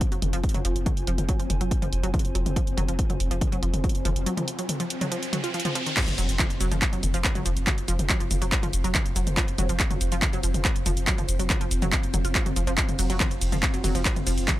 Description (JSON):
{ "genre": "driving peak-time techno", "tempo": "141 BPM", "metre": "4/4", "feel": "straight", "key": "F phrygian", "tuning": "A4 = 441 Hz", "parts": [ { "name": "electronic kick drum", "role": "drums", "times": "0.0-14.6 s", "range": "none", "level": "-26 LUFS", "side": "equal", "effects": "none" }, { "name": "techno drum kit", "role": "drums", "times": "0.0-14.6 s", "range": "crash cymbal, handclaps, hi-hat, ride cymbal, shaker, toms", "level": "-28 LUFS", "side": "equal", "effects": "sidechain pumping on hats, sidechain pumping on toms, sidechain pumping on cymbals, sidechain pumping on perc" }, { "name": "granular cloud pad", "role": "texture", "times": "0.0-14.6 s", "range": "C4 to Ab5", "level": "-34 LUFS", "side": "equal", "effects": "built-in reverb, sidechain pumping" }, { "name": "wide unison pluck", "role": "riff", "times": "0.1-14.6 s", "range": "Eb3 to F4", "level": "-33 LUFS", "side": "right 1 dB", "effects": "tube saturation, sidechain pumping, tape echo" }, { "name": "saturated sub bass", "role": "bass", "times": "0.1-14.5 s", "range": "F1", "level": "-28 LUFS", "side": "equal", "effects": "sidechain pumping, low-pass filter" }, { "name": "riser and impact", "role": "sound effects", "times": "4.0-7.7 s", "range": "none", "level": "-36 LUFS", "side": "equal", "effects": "none" } ], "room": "little or no reverb", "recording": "dry, gritty hardware recording, transformer saturation", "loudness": "-22 LUFS", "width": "side -15 dB against mid", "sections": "0.0-6.0 A section; 6.0-14.6 B section", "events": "riser 4.0-6.0; kick drops out 4.3-6.0; drop 6.0-14.6; impact 6.0-7.7", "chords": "0.0 F5" }